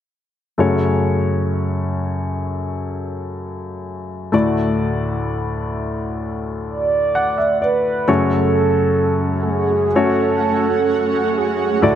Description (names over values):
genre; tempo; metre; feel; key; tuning
pop; 64 BPM; 4/4; straight; F# minor; A4 = 439 Hz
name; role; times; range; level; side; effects
warm grand piano; accompaniment; 0.6-12.0 s; D2 to F#5; -18 LUFS; left 2 dB; none
mellow horn-like synth lead; melody; 6.7-12.0 s; G#4 to D5; -18 LUFS; right 4 dB; chorus
shimmering ambient pad; sustained chords; 9.1-12.0 s; A3 to F#4; -23 LUFS; right 3 dB; chorus, built-in reverb
room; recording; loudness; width
light reverb, small room ambience; none; -16 LUFS; side -10 dB against mid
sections
0.6-8.1 A section; 8.1-12.0 B section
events
grand piano fill 6.7-8.1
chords
0.6 F#m; 4.3 Dadd9; 8.1 F#m